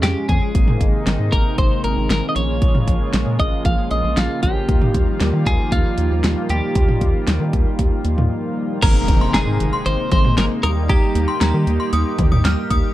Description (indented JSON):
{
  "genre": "synth-pop",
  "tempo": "116 BPM",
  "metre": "4/4",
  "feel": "straight",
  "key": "Ab major",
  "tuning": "A4 = 440 Hz",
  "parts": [
    { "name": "twelve-string electric guitar", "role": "melody", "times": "0.0-11.9 s", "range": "F4 to F5", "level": "-24 LUFS", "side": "equal", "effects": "warbly pitch drift, tape echo" },
    { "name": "mellow synth brass", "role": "accompaniment", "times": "0.0-12.9 s", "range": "G3 to Ab4", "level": "-26 LUFS", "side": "equal", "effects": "chorus" },
    { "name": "chorused pulse-width pad", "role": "sustained chords", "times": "0.0-12.9 s", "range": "C3 to G4", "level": "-27 LUFS", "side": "equal", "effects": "none" },
    { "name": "rubbery square bass", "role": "bass", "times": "0.0-12.8 s", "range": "Ab1 to Eb3", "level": "-20 LUFS", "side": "equal", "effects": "none" },
    { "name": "pop drum kit", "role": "drums", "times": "0.0-12.8 s", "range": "crash cymbal, hi-hat, kick drum, snare drum, toms", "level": "-18 LUFS", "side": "equal", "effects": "none" },
    { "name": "synth chime", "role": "second line", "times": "8.8-12.8 s", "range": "Bb5 to F6", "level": "-26 LUFS", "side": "left 1 dB", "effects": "ensemble chorus, tape echo" },
    { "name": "impact", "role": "sound effects", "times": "8.9-10.9 s", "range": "none", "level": "-28 LUFS", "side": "equal", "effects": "none" }
  ],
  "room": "little or no reverb",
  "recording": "dark, warm production",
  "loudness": "-15 LUFS",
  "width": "side -15 dB against mid",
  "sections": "0.0-8.8 A section; 8.8-12.9 B section",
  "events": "break 8.3-8.8; impact 8.8-10.9",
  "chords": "0.0 Db/F; 0.5 Abadd9; 2.4 Bbm7; 4.7 Ebadd9; 8.8 Abadd9; 10.6 Eb"
}